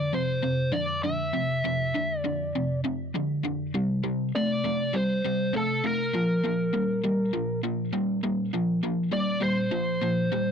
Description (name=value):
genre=rock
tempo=100 BPM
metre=4/4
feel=straight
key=unclear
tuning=A4 = 437 Hz
part: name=biting lead guitar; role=melody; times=0.0-10.5 s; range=A4 to E5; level=-29 LUFS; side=equal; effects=wah, overdrive
part: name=overdriven electric guitar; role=riff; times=0.0-10.5 s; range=F2 to A3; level=-26 LUFS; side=equal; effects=none
room=light reverb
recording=dry, close 1970s-style studio recording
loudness=-24 LUFS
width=side -7 dB against mid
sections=0.0-10.5 A section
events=none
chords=0.0 F5; 3.8 C5; 6.1 Bb5